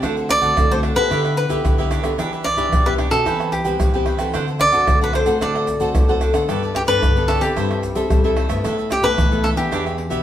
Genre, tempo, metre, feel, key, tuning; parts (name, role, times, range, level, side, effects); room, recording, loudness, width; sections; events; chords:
samba and choro; 111 BPM; 4/4; straight; G major; A4 = 438 Hz
cavaquinho; accompaniment; 0.0-10.2 s; D4 to G5; -27 LUFS; right 4 dB
nylon-string guitar; accompaniment; 0.0-10.2 s; A2 to A4; -23 LUFS; left 3 dB
nylon-string guitar; bass; 0.0-10.2 s; E2 to G3; -25 LUFS; equal
maracas, surdo, pandeiro and tamborim; percussion; 0.0-10.2 s; -21 LUFS; equal
cavaquinho; melody; 0.3-10.2 s; G4 to D5; -19 LUFS; equal
wet stone room reverb, RT60 1.0 s; band playing live in one room; -16 LUFS; side -11 dB against mid
0.0-10.2 A section
0.0 D7; 1.1 G6/D; 2.2 Em7; 3.3 Cmaj7/E; 4.3 D7; 6.5 Gadd9; 7.6 C6/G; 8.6 Asus2; 9.7 Em7